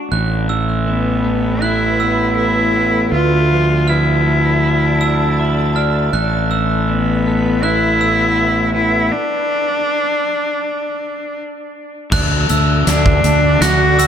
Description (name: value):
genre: post-rock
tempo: 80 BPM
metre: 4/4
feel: straight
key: unclear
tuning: A4 = 440 Hz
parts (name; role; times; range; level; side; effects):
- twelve-string electric guitar; arpeggios; 0.0-14.1 s; A2 to F#4; -23 LUFS; left 3 dB; spring reverb, analog delay
- granular cloud pad; sustained chords; 1.1-14.1 s; A4 to D6; -26 LUFS; right 2 dB; built-in reverb
- glockenspiel with hard plastic mallets; arpeggios; 0.1-14.1 s; E6 to F#6; -24 LUFS; right 6 dB; analog delay
- fuzz fingered electric bass; bass; 0.1-14.1 s; A1 to D2; -17 LUFS; right 1 dB; overdrive
- rich cello; melody; 0.9-14.1 s; B3 to F#4; -17 LUFS; left 1 dB; analog delay
- huge arena drum kit; drums; 12.1-14.1 s; crash cymbal, hi-hat, kick drum, snare drum; -17 LUFS; equal; none
room: light reverb, small room ambience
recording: none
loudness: -13 LUFS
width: side -8 dB against mid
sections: 0.1-12.1 A section; 12.1-14.1 B section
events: stop 9.1-12.1; build-up 12.1-14.1; drum fill 12.1-14.1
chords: 0.1 Asus2; 3.1 Dmadd9; 6.1 Asus2; 9.1 N.C.; 12.1 D